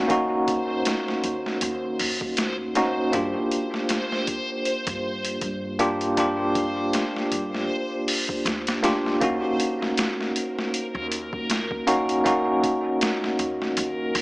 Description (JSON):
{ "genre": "trip hop", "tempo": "79 BPM", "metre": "4/4", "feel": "swing 56% on 16ths", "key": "unclear", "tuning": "A4 = 439 Hz", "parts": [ { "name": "bell-like tine electric piano", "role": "accompaniment", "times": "0.0-14.2 s", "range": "Bb3 to G4", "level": "-24 LUFS", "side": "equal", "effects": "fast stereo tremolo, vintage 12-bit sampler grit, tape echo" }, { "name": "upright bass", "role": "bass", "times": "0.0-14.2 s", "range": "D2 to G2", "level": "-38 LUFS", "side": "equal", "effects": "tube saturation" }, { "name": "backwards swelling texture", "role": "texture", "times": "0.6-14.2 s", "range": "Bb4 to C5", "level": "-33 LUFS", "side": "equal", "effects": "built-in reverb" }, { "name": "boom bap sampler-style drum kit", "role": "drums", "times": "0.1-14.2 s", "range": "hi-hat, kick drum, snare drum", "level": "-27 LUFS", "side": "equal", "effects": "overdrive, studio reverb" } ], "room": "moderate echo chamber reverb, RT60 2.1 s", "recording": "small speaker sound", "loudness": "-22 LUFS", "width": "side -25 dB against mid", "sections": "0.0-9.2 A section; 9.2-14.2 B section", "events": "none", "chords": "0.0 Ebm7; 3.1 Gm7; 9.2 Ebm7" }